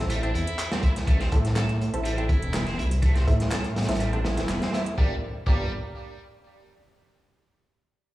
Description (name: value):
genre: breakbeat, breaks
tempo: 123 BPM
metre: 4/4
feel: straight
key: G dorian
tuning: A4 = 441 Hz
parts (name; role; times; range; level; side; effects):
- band-passed chord stab; stabs; 0.0-5.7 s; Bb3 to G5; -33 LUFS; right 1 dB; chorus, digital delay
- detuned saw bass; bass; 0.0-5.7 s; E1 to A2; -26 LUFS; equal; tube saturation
- high-gain distorted guitar; riff; 0.1-5.7 s; G3 to A4; -35 LUFS; right 1 dB; distortion, low-pass filter, digital delay
- crunchy breakbeat drum kit; drums; 0.1-5.6 s; hi-hat, kick drum, snare drum; -25 LUFS; equal; none
- garage drum kit; drums; 0.1-5.0 s; handclaps, hi-hat; -38 LUFS; equal; none
room: light reverb, studio reverb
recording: played on a big sound system in a bare room, large studio reverb, small room ambience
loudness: -22 LUFS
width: side -16 dB against mid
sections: 0.0-5.0 A section; 5.0-6.9 B section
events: none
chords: 0.0 Am; 5.0 Gm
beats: 0.10 0.59 | 1.08 1.56 2.05 2.54 | 3.03 3.52 4.00 4.49 | 4.98 5.47